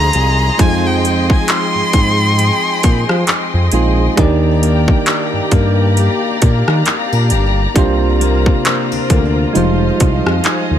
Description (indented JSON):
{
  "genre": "contemporary R&B",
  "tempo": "67 BPM",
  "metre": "4/4",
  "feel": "swing 58% on 16ths",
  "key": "F dorian",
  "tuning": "A4 = 441 Hz",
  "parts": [
    { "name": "clear erhu", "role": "melody", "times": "0.0-3.7 s", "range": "G5 to C6", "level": "-18 LUFS", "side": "equal", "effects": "digital delay" },
    { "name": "soft electric-piano-like synth keys", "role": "accompaniment", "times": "0.0-10.8 s", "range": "G3 to Ab5", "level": "-20 LUFS", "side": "right 6 dB", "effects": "chorus" },
    { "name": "muted studio string section", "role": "sustained chords", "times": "0.0-10.8 s", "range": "F4 to C6", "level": "-21 LUFS", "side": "left 2 dB", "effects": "none" },
    { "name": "picked steel-string acoustic guitar", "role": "arpeggios", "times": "0.0-10.8 s", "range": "C3 to Ab4", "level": "-21 LUFS", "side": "left 8 dB", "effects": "digital delay" },
    { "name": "smooth synth bass", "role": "bass", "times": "0.0-10.8 s", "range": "F1 to F3", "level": "-15 LUFS", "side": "equal", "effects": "none" },
    { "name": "trap drum kit", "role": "drums", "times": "0.1-10.7 s", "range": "handclaps, hi-hat, kick drum, rim click", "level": "-15 LUFS", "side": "equal", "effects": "overdrive" }
  ],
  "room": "small room reverb",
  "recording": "none",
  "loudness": "-11 LUFS",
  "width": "side -10 dB against mid",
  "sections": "0.0-10.8 A section",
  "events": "synth keys fill 10.0-10.8",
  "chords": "0.0 Fm7; 4.2 Ebmaj7; 7.8 C9sus4; 9.5 Fm9",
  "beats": "| 0.59 1.49 2.38 3.28 | 4.17 5.07 5.97 6.86 | 7.76 8.65 9.55 10.44"
}